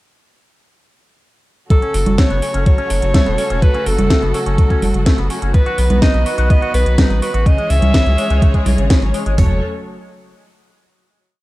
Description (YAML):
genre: italo disco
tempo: 125 BPM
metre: 4/4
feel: straight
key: F# dorian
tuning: A4 = 439 Hz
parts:
  - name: clear alto saxophone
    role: melody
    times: 1.7-9.6 s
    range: A4 to E5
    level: -21 LUFS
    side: equal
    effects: digital delay
  - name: dark studio string section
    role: sustained chords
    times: 1.7-9.6 s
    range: C#3 to C#5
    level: -24 LUFS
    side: equal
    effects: none
  - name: electric guitar with an envelope filter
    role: arpeggios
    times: 1.7-9.6 s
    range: C#3 to F#4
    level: -26 LUFS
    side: left 2 dB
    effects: wide subtle chorus, tape echo
  - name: clean 12-bit digital drum machine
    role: drums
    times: 1.7-9.5 s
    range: hi-hat, kick drum, toms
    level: -12 LUFS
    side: equal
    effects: overdrive, studio reverb
  - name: house drum kit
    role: drums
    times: 1.7-9.4 s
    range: congas, hi-hat, snare drum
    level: -20 LUFS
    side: right 1 dB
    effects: studio reverb
  - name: round analog bass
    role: bass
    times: 1.9-9.6 s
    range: E1 to C#2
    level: -16 LUFS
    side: equal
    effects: none
room: light reverb, digital ambience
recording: dark, warm production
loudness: -12 LUFS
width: side -18 dB against mid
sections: 1.7-9.4 verse; 9.4-11.3 final chord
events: none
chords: 1.7 F#m; 5.5 B; 7.5 C#m; 9.4 F#m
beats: | 1.70 2.18 2.66 3.14 | 3.62 4.10 4.58 5.06 | 5.54 6.02 6.50 6.98 | 7.46 7.94 8.42 8.90 | 9.38